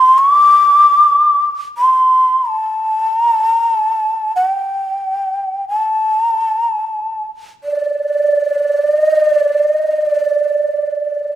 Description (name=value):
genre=japanese traditional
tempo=free time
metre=none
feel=none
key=unclear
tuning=A4 = 436 Hz
part: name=breathy mellow shakuhachi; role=solo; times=0.0-11.4 s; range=D5 to D6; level=-12 LUFS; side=equal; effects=none
room=moderate recital hall reverb, RT60 1.5 s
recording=none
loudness=-12 LUFS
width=side -12 dB against mid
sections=0.0-11.4 A section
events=none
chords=none